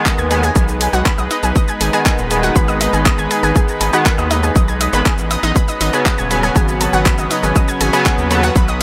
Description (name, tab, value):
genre	melodic techno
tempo	120 BPM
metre	4/4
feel	straight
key	G# minor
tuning	A4 = 440 Hz
part	lush unison pad	sustained chords	0.0-8.8 s	F#3 to B4	-24 LUFS	equal	chorus, sidechain pumping
part	sync-sweep polysynth	stabs	0.0-8.4 s	C#3 to B3	-23 LUFS	equal	chorus, sidechain pumping, dub echo
part	analog pluck	arpeggios	0.1-8.8 s	D#4 to G#6	-22 LUFS	equal	chorus, sidechain pumping, dub echo
part	electronic kick drum	drums	0.1-8.7 s	none	-17 LUFS	equal	none
part	house drum kit	drums	0.1-8.8 s	handclaps, hi-hat, shaker	-23 LUFS	equal	sidechain pumping on toms, sidechain pumping on perc, sidechain pumping on hats
part	gritty driven synth bass	bass	0.2-8.8 s	D#1 to D#2	-22 LUFS	equal	sidechain pumping
room	light reverb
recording	none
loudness	-15 LUFS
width	mono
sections	0.0-8.8 A section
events	none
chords	0.0 G#m; 5.6 Bsus2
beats	0.06 0.56 1.06 | 1.56 2.06 2.56 3.06 | 3.56 4.06 4.56 5.06 | 5.56 6.06 6.56 7.06 | 7.56 8.06 8.56